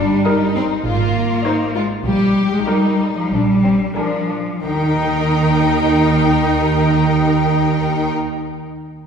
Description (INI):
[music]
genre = cinematic, playful, whimsical film cue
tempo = 88-102 BPM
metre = 4/4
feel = straight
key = Eb major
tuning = A4 = 440 Hz
[part]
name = rich studio violin section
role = second line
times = 0.0-8.1 s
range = C4 to Bb4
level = -23 LUFS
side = left 4 dB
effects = none
[part]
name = rich studio cello section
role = bass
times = 0.0-8.1 s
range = Eb3 to C4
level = -18 LUFS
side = right 1 dB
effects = none
[part]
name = rich studio double bass section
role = bass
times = 0.0-8.1 s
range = G1 to Eb2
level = -22 LUFS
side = right 3 dB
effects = none
[part]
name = clear studio violin section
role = melody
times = 0.3-8.1 s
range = Eb5 to Ab5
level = -25 LUFS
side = left 3 dB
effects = none
[part]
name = clear studio viola section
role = accompaniment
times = 0.3-8.1 s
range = D4 to C5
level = -21 LUFS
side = equal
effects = none
[sound]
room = wet concert hall reverb, RT60 2.3 s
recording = recorded in a church or concert hall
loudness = -14 LUFS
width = side -6 dB against mid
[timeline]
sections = 0.0-4.6 A section; 4.6-7.4 B section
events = slowing down 0.0-4.6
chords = 0.0 Eb/G; 0.8 Ab; 2.1 Eb/Bb; 3.3 Bb7; 4.6 Eb